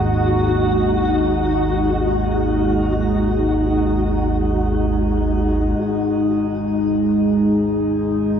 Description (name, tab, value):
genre	dark ambient drone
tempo	free time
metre	none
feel	none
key	unclear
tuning	A4 = 439 Hz
part	deep dark ambient pad	sustained chords	0.0-8.4 s	G#3 to F#4	-18 LUFS	equal	chorus, built-in reverb, shimmer reverb
part	deep rumbling drone	drone	0.0-8.4 s	G#1 to D#2	-22 LUFS	equal	built-in reverb
part	flickering grainy texture	texture	0.0-5.8 s	D#4 to F#4	-25 LUFS	left 1 dB	built-in reverb, shimmer reverb
room	wet lush hall reverb, RT60 2.8 s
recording	dreamy mix soaked in reverb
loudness	-16 LUFS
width	side -8 dB against mid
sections	0.0-5.8 A section; 5.8-8.4 B section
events	none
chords	0.0 G#5